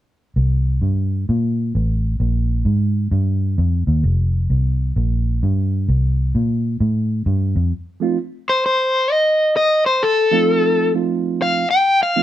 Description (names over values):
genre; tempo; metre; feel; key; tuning
blues; 130 BPM; 4/4; swing 64% on 8ths; F mixolydian; A4 = 438 Hz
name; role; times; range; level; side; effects
vintage muted fingered electric bass; bass; 0.4-7.7 s; F1 to Bb2; -16 LUFS; equal; none
reed electric piano; accompaniment; 8.0-12.2 s; F3 to F4; -19 LUFS; right 7 dB; overdrive
overdriven electric guitar; melody; 8.5-12.2 s; A4 to G5; -14 LUFS; left 2 dB; harmonic tremolo
room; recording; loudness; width
light reverb; band playing live in one room; -16 LUFS; side -12 dB against mid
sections
0.4-7.7 A section; 7.7-12.2 B section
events
none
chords
0.4 C5; 2.2 Bb5; 4.0 F5; 5.0 Gm/Bb; 5.9 C5; 7.7 F7